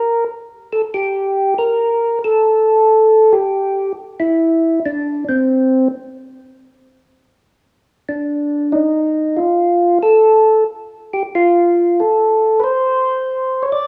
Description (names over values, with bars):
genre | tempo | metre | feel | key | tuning
jazz | 92 BPM | 4/4 | swing 66% on 8ths | unclear | A4 = 438 Hz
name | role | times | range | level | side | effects
percussive tonewheel organ | solo | 0.0-13.9 s | C4 to D5 | -15 LUFS | equal | slow rotary speaker
room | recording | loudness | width
light reverb | home recording on cassette, studio reverb | -15 LUFS | mono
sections
0.0-13.9 A section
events
none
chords
none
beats
0.27 | 0.92 1.57 2.22 2.87 | 3.52 4.17 4.83 5.48 | 6.13 6.78 7.43 8.08 | 8.73 9.38 10.03 10.69 | 11.34 11.99 12.64 13.29